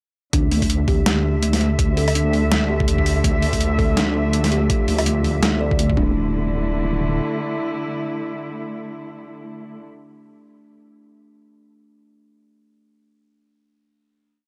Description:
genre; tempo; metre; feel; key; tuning
half-time drum and bass; 165 BPM; 4/4; swing 58% on 16ths, half-time; D minor; A4 = 440 Hz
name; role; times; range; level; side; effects
muted studio cello section; sustained chords; 0.3-9.8 s; D3 to E5; -29 LUFS; equal; vintage 12-bit sampler grit, sidechain pumping
kalimba; arpeggios; 0.3-6.3 s; A3 to D5; -27 LUFS; equal; analog delay
deep soft wobble bass; bass; 0.3-7.2 s; D1 to D2; -23 LUFS; equal; chorus, tube saturation
boom bap sampler-style drum kit; drums; 0.3-5.9 s; hi-hat, snare drum, woodblock; -25 LUFS; equal; overdrive
electronic kick drum; drums; 0.3-6.1 s; none; -23 LUFS; equal; overdrive
metallic inharmonic drone; texture; 4.2-6.2 s; F3 to F4; -38 LUFS; equal; none
room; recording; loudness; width
digital ambience; dry, gritty hardware recording, transformer saturation; -20 LUFS; mono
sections
0.3-6.2 drop; 6.2-9.1 final hit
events
drop 0.3-6.2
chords
0.3 Dmadd9; 6.2 Dsus2

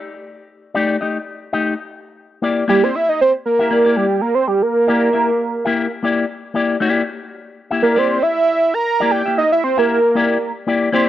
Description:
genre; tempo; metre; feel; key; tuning
funk; 116 BPM; 4/4; straight; C mixolydian; A4 = 442 Hz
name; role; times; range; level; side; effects
electric guitar with an envelope filter; accompaniment; 0.7-11.1 s; A3 to E5; -19 LUFS; left 4 dB; spring reverb
fat analog lead; melody; 2.7-11.1 s; G4 to Bb5; -14 LUFS; right 2 dB; chorus, phaser
room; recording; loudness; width
light reverb; dry, close 1970s-style studio recording; -15 LUFS; side -12 dB against mid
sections
0.0-2.2 A section; 2.2-11.1 B section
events
analog synth lead solo 2.2-11.1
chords
0.0 Eb(#11)/A; 2.2 C9

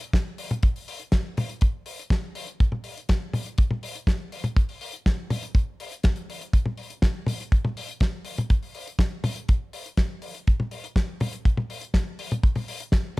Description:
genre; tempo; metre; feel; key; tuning
italo disco; 122 BPM; 4/4; straight; none; none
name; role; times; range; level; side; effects
damped 70s drum kit; drums; 0.0-13.2 s; hi-hat, snare drum, toms; -29 LUFS; left 1 dB; none
kick drum; drums; 0.1-13.0 s; none; -20 LUFS; equal; none
room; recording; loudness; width
little or no reverb; dry, gritty hardware recording; -24 LUFS; side -22 dB against mid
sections
0.0-13.2 A section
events
none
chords
none

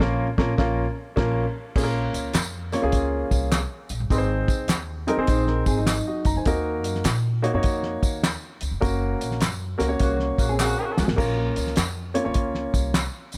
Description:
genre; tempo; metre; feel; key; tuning
uptempo 1960s-style soul; 102 BPM; 4/4; swing 65% on 8ths; Bb minor; A4 = 441 Hz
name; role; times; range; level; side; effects
warm grand piano; accompaniment; 0.0-13.0 s; Bb3 to Bb5; -28 LUFS; equal; none
mellow electric guitar; riff; 0.0-1.4, 5.1-6.4, 10.5-11.4 s; F3 to C5; -32 LUFS; equal; spring reverb
upright bass; bass; 0.0-13.4 s; F1 to Bb2; -30 LUFS; equal; none
cloth-damped thuddy drum kit; drums; 0.0-13.4 s; crash cymbal, hi-hat, kick drum, snare drum; -27 LUFS; equal; none
tambourine and handclaps; percussion; 1.8-13.4 s; none; -34 LUFS; equal; none
mellow horn section; second line; 10.0-11.1 s; Db3 to Gb4; -33 LUFS; equal; none
room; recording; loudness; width
little or no reverb; none; -24 LUFS; mono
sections
0.0-1.8 A section; 1.8-13.4 B section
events
band accent 0.0-1.8, 8.8-11.2; drum fill 10.6-11.2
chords
0.0 Bbm; 4.1 Ab; 6.5 Ebm; 8.8 Gb; 11.2 Bbm

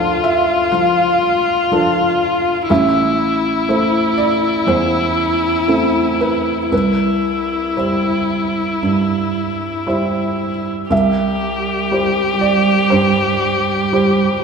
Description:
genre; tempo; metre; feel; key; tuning
neoclassical piano and strings; 57-62 BPM; 4/4; rubato; C major; A4 = 442 Hz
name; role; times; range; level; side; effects
muted violin; melody; 0.0-14.4 s; E4 to G4; -17 LUFS; left 3 dB; analog delay
felt-muted upright piano; accompaniment; 0.0-14.4 s; A1 to F5; -17 LUFS; right 2 dB; none
muted cello; second line; 10.9-14.4 s; G3; -22 LUFS; right 8 dB; none
room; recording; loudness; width
wet lush hall reverb, RT60 2.0 s; dreamy mix soaked in reverb; -14 LUFS; side -5 dB against mid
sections
0.0-10.9 A section; 10.9-14.4 A section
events
none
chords
0.0 Dm; 2.7 Am; 6.7 C

